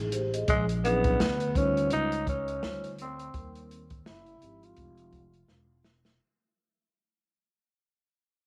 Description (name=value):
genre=hip hop, jazz-hop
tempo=84 BPM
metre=4/4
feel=swing 58% on 16ths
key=F minor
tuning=A4 = 440 Hz
part: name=vibraphone with soft mallets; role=accompaniment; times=0.0-5.2 s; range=F3 to Eb5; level=-37 LUFS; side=equal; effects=low-pass filter
part: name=upright bass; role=bass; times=0.0-6.2 s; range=E1 to Eb2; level=-36 LUFS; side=equal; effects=none
part: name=open jazz drum kit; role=drums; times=0.1-6.2 s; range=hi-hat, kick drum, snare drum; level=-35 LUFS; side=equal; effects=none
part: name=growling tenor saxophone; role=melody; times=0.5-5.7 s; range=Ab3 to F4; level=-32 LUFS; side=equal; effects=low-pass filter, tape echo
room=light reverb, small room ambience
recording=vinyl crackle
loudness=-28 LUFS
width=mono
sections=0.0-6.2 A section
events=fade-out 0.0-6.2; filter sweep 0.0-6.2; drum fill 5.5-6.2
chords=0.5 Bbm7; 1.2 G7#11/D; 1.9 Dbmaj9#11; 3.3 Cm7/Eb; 4.1 Gbsus2; 4.8 Fm9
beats=| 0.48 1.19 1.91 2.62 | 3.34 4.05 4.76 5.48